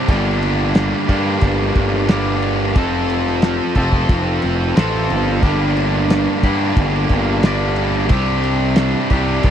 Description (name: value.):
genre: classic rock.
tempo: 90 BPM.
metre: 4/4.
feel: straight.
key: G minor.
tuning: A4 = 440 Hz.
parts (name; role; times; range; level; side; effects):
distorted electric guitar; riff; 0.0-9.5 s; G2 to A4; -18 LUFS; equal; overdrive.
fuzz picked electric bass; bass; 0.1-9.5 s; F1 to G2; -19 LUFS; equal; overdrive.
cloth-damped thuddy drum kit; drums; 0.1-9.5 s; crash cymbal, kick drum, ride cymbal, snare drum; -16 LUFS; equal; none.
room: studio ambience.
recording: dry, close 1970s-style studio recording.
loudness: -14 LUFS.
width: side -9 dB against mid.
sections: 0.0-9.5 A section.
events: none.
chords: 0.1 Gm; 2.8 F; 5.4 Gm; 8.1 Csus2.